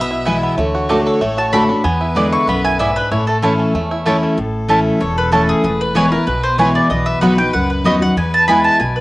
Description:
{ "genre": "bluegrass", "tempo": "190 BPM", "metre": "4/4", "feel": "straight", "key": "A major", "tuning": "A4 = 440 Hz", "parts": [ { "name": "bluegrass banjo", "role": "melody", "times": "0.0-4.4 s", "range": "A3 to A4", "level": "-22 LUFS", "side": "right 1 dB", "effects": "cassette tape" }, { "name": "dark fiddle", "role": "second line", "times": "0.0-9.0 s", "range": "A4 to E5", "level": "-25 LUFS", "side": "left 1 dB", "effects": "cassette tape" }, { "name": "picked steel-string acoustic guitar", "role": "accompaniment", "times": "0.0-9.0 s", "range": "E2 to F#4", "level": "-17 LUFS", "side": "left 1 dB", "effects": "cassette tape" }, { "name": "upright bass", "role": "bass", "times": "0.0-9.0 s", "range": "E1 to E2", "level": "-24 LUFS", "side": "equal", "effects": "none" }, { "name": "mandolin", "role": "stabs", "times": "0.3-8.6 s", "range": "A3 to B5", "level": "-19 LUFS", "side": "right 2 dB", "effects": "cassette tape" }, { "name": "mandolin", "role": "melody", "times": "1.4-9.0 s", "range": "G#4 to C#6", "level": "-17 LUFS", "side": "equal", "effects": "cassette tape" } ], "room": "moderate spring reverb, RT60 1.2 s, small room ambience", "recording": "home recording on cassette", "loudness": "-13 LUFS", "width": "side -19 dB against mid", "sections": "0.0-4.4 A section; 4.4-9.0 B section", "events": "mandolin solo 4.4-9.0", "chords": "0.0 E; 0.6 D; 1.8 E7; 3.1 A; 5.6 E; 6.9 B; 8.2 E", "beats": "0.27 | 0.58 0.90 1.21 1.53 | 1.85 2.16 2.48 2.80 | 3.11 3.43 3.75 4.06 | 4.38 4.70 5.01 5.33 | 5.64 5.96 6.28 6.59 | 6.91 7.22 7.54 7.86 | 8.17 8.49 8.80" }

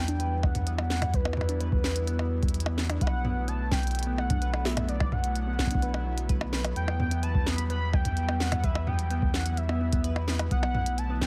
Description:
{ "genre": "IDM", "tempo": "128 BPM", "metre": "4/4", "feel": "straight", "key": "unclear", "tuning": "A4 = 438 Hz", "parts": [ { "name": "warm velvety synth lead", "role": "melody", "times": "0.0-11.3 s", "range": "B4 to B5", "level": "-37 LUFS", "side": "equal", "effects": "chorus, delay" }, { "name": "warbly tape-like pad", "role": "sustained chords", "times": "0.0-11.3 s", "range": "D3 to E4", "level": "-40 LUFS", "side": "equal", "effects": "chorus, built-in reverb, sidechain pumping" }, { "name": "harp-like synth pluck", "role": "arpeggios", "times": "0.0-11.3 s", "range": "F#3 to B4", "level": "-39 LUFS", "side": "equal", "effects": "chorus, phaser, delay" }, { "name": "warm sub bass", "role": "bass", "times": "0.0-11.3 s", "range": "B1 to E2", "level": "-32 LUFS", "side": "equal", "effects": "none" }, { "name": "glitchy drum kit", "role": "drums", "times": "0.1-11.3 s", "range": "hi-hat, percussion blips, snare drum, toms", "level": "-35 LUFS", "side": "equal", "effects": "none" }, { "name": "electronic kick drum", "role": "drums", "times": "0.4-11.3 s", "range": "none", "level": "-31 LUFS", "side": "equal", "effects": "none" } ], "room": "little or no reverb", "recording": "none", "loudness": "-28 LUFS", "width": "mono", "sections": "0.0-11.3 A section", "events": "none", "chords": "0.0 Emadd9; 3.0 Bm7; 6.8 Emadd9; 10.5 Bm7", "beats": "0.20 0.67 | 1.14 1.61 2.07 2.54 | 3.01 3.48 3.95 4.42 | 4.89 5.36 5.82 6.29 | 6.76 7.23 7.70 8.17 | 8.64 9.11 9.57 10.04 | 10.51 10.98" }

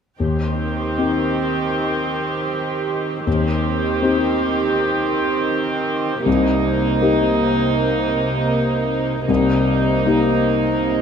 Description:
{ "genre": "cinematic, emotional film score for orchestra", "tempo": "79 BPM", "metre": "4/4", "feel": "rubato", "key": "Eb major", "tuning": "A4 = 442 Hz", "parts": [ { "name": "warm grand piano", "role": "accompaniment", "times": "0.2-11.0 s", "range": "C2 to G4", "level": "-21 LUFS", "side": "left 4 dB", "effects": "none" }, { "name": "warm studio viola section", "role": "accompaniment", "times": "0.2-11.0 s", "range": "Bb3 to G4", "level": "-20 LUFS", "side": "right 3 dB", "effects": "none" }, { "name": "rich studio cello section", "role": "bass", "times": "0.2-11.0 s", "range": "C3 to Eb3", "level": "-24 LUFS", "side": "equal", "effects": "none" } ], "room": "light reverb", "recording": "close, detailed microphones", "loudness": "-17 LUFS", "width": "side -7 dB against mid", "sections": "0.2-11.0 A section", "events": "none", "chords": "0.2 Eb6; 6.3 Cm7", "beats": "| 0.20 0.98 1.74 2.50 | 3.27 4.02 4.77 5.52 | 6.26 7.02 7.77 8.52 | 9.29 10.06 10.84" }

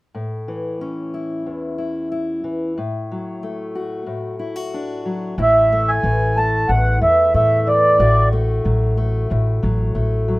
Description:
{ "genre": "folk", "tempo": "92 BPM", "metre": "4/4", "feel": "straight", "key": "A major", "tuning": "A4 = 440 Hz", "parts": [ { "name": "fingerpicked steel-string acoustic guitar", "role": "accompaniment", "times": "0.1-10.4 s", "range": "E2 to F#4", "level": "-24 LUFS", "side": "left 2 dB", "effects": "none" }, { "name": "mellow accordion", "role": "melody", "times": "5.4-8.3 s", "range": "D5 to A5", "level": "-15 LUFS", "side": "right 1 dB", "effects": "none" }, { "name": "upright bass", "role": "bass", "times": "5.4-10.4 s", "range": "A1 to A2", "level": "-18 LUFS", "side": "equal", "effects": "none" } ], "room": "light reverb", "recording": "rough home demo mix", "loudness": "-17 LUFS", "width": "side -20 dB against mid", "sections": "0.1-5.4 A section; 5.4-10.4 B section", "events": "none", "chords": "0.1 A; 2.8 D/A; 5.4 A5; 8.0 D/A (rootless)", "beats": "| 0.14 0.80 1.46 2.11 | 2.77 3.42 4.08 4.73 | 5.38 6.04 6.69 7.34 | 8.00 8.65 9.31 9.96" }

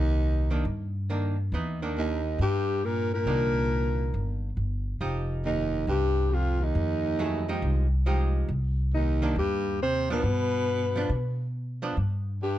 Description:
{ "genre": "jazz, small-group swing and bop", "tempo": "138 BPM", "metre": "4/4", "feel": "swing 67% on 8ths", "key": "C minor", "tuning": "A4 = 441 Hz", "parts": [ { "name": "breathy alto saxophone", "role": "melody", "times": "0.0-12.6 s", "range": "Eb4 to C5", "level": "-30 LUFS", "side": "left 3 dB", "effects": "none" }, { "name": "warm baritone saxophone", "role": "second line", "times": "0.0-12.6 s", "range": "Eb2 to C3", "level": "-32 LUFS", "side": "right 4 dB", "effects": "none" }, { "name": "upright bass", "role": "bass", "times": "0.0-12.6 s", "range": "F1 to B2", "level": "-27 LUFS", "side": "equal", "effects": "none" }, { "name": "archtop guitar, miked and amplified", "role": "accompaniment", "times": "0.5-12.0 s", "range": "Eb3 to Ab4", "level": "-33 LUFS", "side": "right 2 dB", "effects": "none" } ], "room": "little or no reverb", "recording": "dark, warm production", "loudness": "-25 LUFS", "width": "side -13 dB against mid", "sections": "0.0-12.6 A section", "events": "none", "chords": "0.0 Cm9; 5.0 Fm9; 8.5 Cmadd9; 10.2 G", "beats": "0.22 0.65 1.09 | 1.52 1.96 2.40 2.83 | 3.27 3.70 4.14 4.58 | 5.01 5.45 5.88 6.32 | 6.75 7.19 7.62 8.06 | 8.49 8.93 9.36 9.80 | 10.23 10.67 11.10 11.54 | 11.97 12.40" }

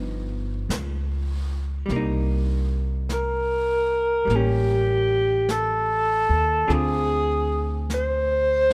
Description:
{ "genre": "jazz ballad", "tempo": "50 BPM", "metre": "4/4", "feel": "swing 66% on 8ths", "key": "C minor", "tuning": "A4 = 440 Hz", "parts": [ { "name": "archtop guitar, miked and amplified", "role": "accompaniment", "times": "0.0-8.7 s", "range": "D3 to Ab4", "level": "-32 LUFS", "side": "equal", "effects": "none" }, { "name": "upright bass", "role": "bass", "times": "0.0-8.7 s", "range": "G1 to Eb2", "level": "-28 LUFS", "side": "equal", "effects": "none" }, { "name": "jazz brush drum kit", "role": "drums", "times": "0.7-8.7 s", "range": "brushed snare drum, hi-hat, snare drum", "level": "-40 LUFS", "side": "equal", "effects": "none" }, { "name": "warm alto saxophone", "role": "melody", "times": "3.1-8.7 s", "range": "G4 to C5", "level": "-24 LUFS", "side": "equal", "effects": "none" } ], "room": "light reverb, small room ambience", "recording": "rough home demo mix", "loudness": "-23 LUFS", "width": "mono", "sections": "0.0-8.7 A section", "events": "none", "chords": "0.0 G7b13; 1.9 Cm7; 4.3 A7b9; 6.7 Dm7b5", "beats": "0.69 | 1.89 3.09 4.29 5.49 | 6.69 7.89" }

